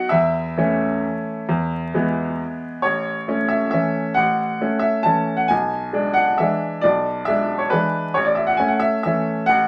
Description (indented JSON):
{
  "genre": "classical, piano waltz",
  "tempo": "135 BPM",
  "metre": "3/4",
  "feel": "uneven beats, rubato",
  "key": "A major",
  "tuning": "A4 = 441 Hz",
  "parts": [
    { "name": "bright upright piano", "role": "solo", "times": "0.0-9.7 s", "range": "A1 to A5", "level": "-20 LUFS", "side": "equal", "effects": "none" }
  ],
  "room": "moderate studio reverb, RT60 0.7 s",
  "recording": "vinyl crackle",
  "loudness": "-21 LUFS",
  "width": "mono",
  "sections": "0.0-2.8 A section; 2.8-9.7 B section",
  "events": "none",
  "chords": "0.1 A/E; 1.5 E; 2.8 A; 5.5 E7/B; 8.2 A",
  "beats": "| 0.11 0.56 1.03 | 1.48 1.93 2.39 | 2.84 3.28 3.72 | 4.16 4.60 5.06 | 5.50 5.93 6.38 | 6.83 7.27 7.71 | 8.15 8.58 9.04 | 9.48"
}